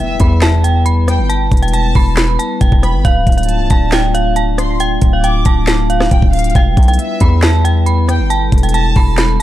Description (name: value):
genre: hip hop, trap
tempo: 137 BPM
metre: 4/4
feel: half-time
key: E phrygian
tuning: A4 = 439 Hz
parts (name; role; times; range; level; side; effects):
- dark detuned synth bell; melody; 0.0-9.4 s; F5 to B5; -19 LUFS; right 2 dB; chorus, tremolo, low-pass filter, digital delay
- warm symphonic violin section; second line; 0.0-9.2 s; E5 to D6; -24 LUFS; left 1 dB; digital delay
- glass harmonica; sustained chords; 0.0-9.4 s; G3 to F5; -21 LUFS; left 3 dB; none
- impact; sound effects; 0.0-1.3 s; none; -28 LUFS; equal; none
- hard-hitting 808-style bass; bass; 0.2-9.4 s; C1 to E2; -13 LUFS; equal; none
- trap drum kit; drums; 0.2-9.4 s; handclaps, hi-hat, kick drum, rim click, snare drum; -13 LUFS; equal; none
room: digital ambience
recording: dark, warm production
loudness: -10 LUFS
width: side -14 dB against mid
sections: 0.0-9.4 A section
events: impact 0.0-1.3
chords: 0.0 Em; 3.0 Dm; 6.6 Em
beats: 0.42 0.86 | 1.30 1.73 2.17 2.61 | 3.05 3.49 3.92 4.36 | 4.80 5.24 5.68 6.11 | 6.55 6.99 7.43 7.87 | 8.30 8.74 9.18